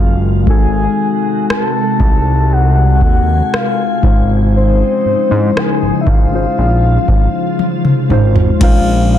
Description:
contemporary R&B; 59 BPM; 4/4; straight; A4 = 440 Hz
soft octave-layered synth lead; melody; 0.0-9.2 s; C5 to A5; -18 LUFS; left 2 dB; chorus, tremolo, tape echo
muted felt-like synth keys; accompaniment; 0.0-9.2 s; Gb3 to C5; -18 LUFS; left 3 dB; chorus
glassy FM pad; sustained chords; 0.0-9.2 s; C3 to Ab5; -21 LUFS; left 1 dB; ensemble chorus, built-in reverb
fat analog bass; bass; 0.0-9.2 s; Gb1 to Ab2; -13 LUFS; equal
booming analog drum machine; drums; 0.5-8.8 s; crash cymbal, hi-hat, kick drum, rim click, toms; -13 LUFS; equal
little or no reverb; dense, heavily limited modern master; -10 LUFS; side -10 dB against mid
0.0-8.6 A section
drum fill 7.6-8.6
0.5 Ab7b9; 4.0 Dbmaj9/Ab; 8.6 Bbm11

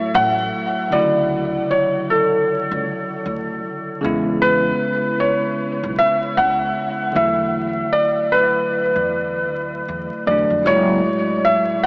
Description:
lo-fi hip hop; 77 BPM; 4/4; swing 62% on 16ths; F# minor; A4 = 445 Hz
felt-muted upright piano; melody; 0.0-11.9 s; A4 to F#5; -17 LUFS; equal; low-pass filter, diffuse ambient delay
bell-like tine electric piano; accompaniment; 0.0-11.9 s; A2 to E4; -23 LUFS; equal; fast stereo tremolo, low-pass filter
upright bass; bass; 0.1-11.0 s; F#1 to E#2; -27 LUFS; equal
wet huge ambient reverb, RT60 7.2 s; dreamy mix soaked in reverb, vinyl crackle, small speaker sound; -16 LUFS; side -32 dB against mid
0.0-11.9 A section
0.0 F#m7; 0.9 Dmaj9; 4.0 C#m7/E; 7.2 E9sus4; 10.7 F#m9

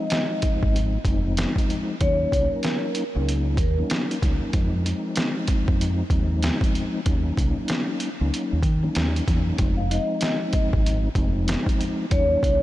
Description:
hip hop, boom-bap hip-hop; 95 BPM; 4/4; swing 61% on 16ths; F phrygian; A4 = 445 Hz
vibraphone with soft mallets; melody; 0.0-3.8, 9.8-12.6 s; Bb4 to F5; -27 LUFS; equal; high-pass filter, low-pass filter, ping-pong delay
mellow tonewheel organ; accompaniment; 0.0-12.6 s; F3 to Eb4; -27 LUFS; left 2 dB; chorus vibrato, fast rotary speaker, high-pass filter, low-pass filter
trip hop sampler-style drum kit; drums; 0.1-12.6 s; hi-hat, kick drum, snare drum; -24 LUFS; equal; overdrive
deep dub fingered electric bass; bass; 0.6-12.6 s; F1 to Eb3; -24 LUFS; equal
light reverb, digital ambience; -21 LUFS; side -15 dB against mid
0.0-9.6 A section; 9.6-12.6 B section
0.0 Fm7; 2.0 Ebm7; 4.5 Fm7; 7.1 Ebm7; 9.6 Fm7; 12.1 Ebm7

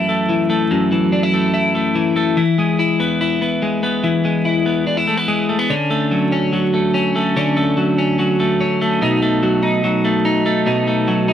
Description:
indie pop; 145 BPM; 4/4; straight; A4 = 442 Hz
twelve-string electric guitar; solo; 0.0-11.3 s; F#2 to E4; -15 LUFS; left 1 dB
moderate studio ambience, RT60 0.5 s; band playing live in one room, vinyl crackle; -15 LUFS; side -10 dB against mid
0.0-5.7 A section; 5.7-11.3 B section
0.0 F#m7; 2.4 E; 5.7 Dmaj7; 9.0 B7

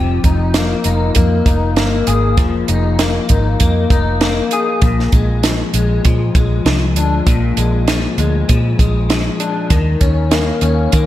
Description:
indie pop, bedroom pop; 98 BPM; 4/4; swing 55% on 16ths; A4 = 440 Hz
electric guitar through a small old amp; accompaniment; 0.0-11.1 s; Bb2 to Ab4; -17 LUFS; left 4 dB; ensemble chorus, vibrato effect, slapback echo
vintage muted fingered electric bass; bass; 0.0-11.1 s; F1 to Eb3; -16 LUFS; equal
compact cocktail drum kit; drums; 0.2-11.1 s; hi-hat, kick drum, snare drum; -15 LUFS; right 1 dB
moderate recital hall reverb, RT60 1.2 s; big arena sound; -12 LUFS; side -13 dB against mid
0.0-11.1 A section
0.0 Fm11; 4.8 Bb7; 9.7 Eb7(no3)

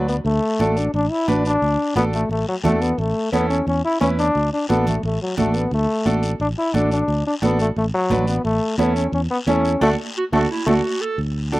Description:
latin, cumbia; 176 BPM; 4/4; straight; D major; A4 = 440 Hz
breathy trombone; melody; 0.0-10.7 s; F#3 to E4; -21 LUFS; left 2 dB
bright upright piano; accompaniment; 0.0-11.6 s; C#4 to B4; -23 LUFS; right 2 dB; slapback echo
fingered electric bass; bass; 0.0-11.6 s; A1 to E2; -22 LUFS; equal
guiro; percussion; 0.1-11.6 s; -36 LUFS; left 4 dB
congas; percussion; 0.3-11.6 s; -26 LUFS; right 3 dB
warm clarinet; second line; 10.2-11.2 s; E4 to A4; -23 LUFS; right 2 dB; slapback echo
little or no reverb; recorded outdoors, with no room sound; -17 LUFS; side -18 dB against mid
0.3-11.2 A section
band accent 9.8-11.2
0.3 D; 3.0 A; 4.4 D; 8.4 A; 9.8 D

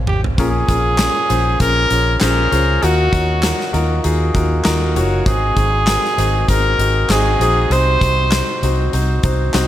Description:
piano-driven pop; 98 BPM; 4/4; swing 56% on 16ths; Bb minor; A4 = 441 Hz
clear concert grand piano; accompaniment; 0.0-9.7 s; Ab2 to Db5; -20 LUFS; left 1 dB
vintage muted fingered electric bass; bass; 0.0-9.7 s; Gb1 to Eb2; -18 LUFS; equal
clear trumpet; melody; 0.1-8.9 s; Gb4 to C5; -18 LUFS; equal
huge arena drum kit; drums; 0.1-9.7 s; handclaps, hi-hat, kick drum, snare drum, toms; -20 LUFS; equal
light reverb; -13 LUFS; side -12 dB against mid
0.4-9.7 A section
drum fill 0.0-0.4
0.4 Bbm7; 2.8 Ebmadd9; 5.3 Ab7; 7.7 Cdim

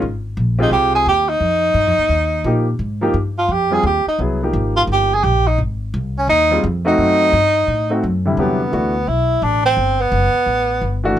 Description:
modal jazz; 172 BPM; 4/4; swing 63% on 8ths; A4 = 440 Hz
upright bass; bass; 0.0-11.2 s; F#1 to Bb2; -20 LUFS; left 1 dB
mellow tenor saxophone; melody; 0.6-11.0 s; B3 to Ab4; -16 LUFS; right 1 dB
warm grand piano; accompaniment; 0.6-8.9, 11.0-11.2 s; C3 to Ab4; -19 LUFS; equal
little or no reverb; close, detailed microphones; -14 LUFS; side -11 dB against mid
0.0-8.4 A section; 8.4-11.2 B section
0.0 Fm9; 7.0 F#dim7; 8.4 Em11

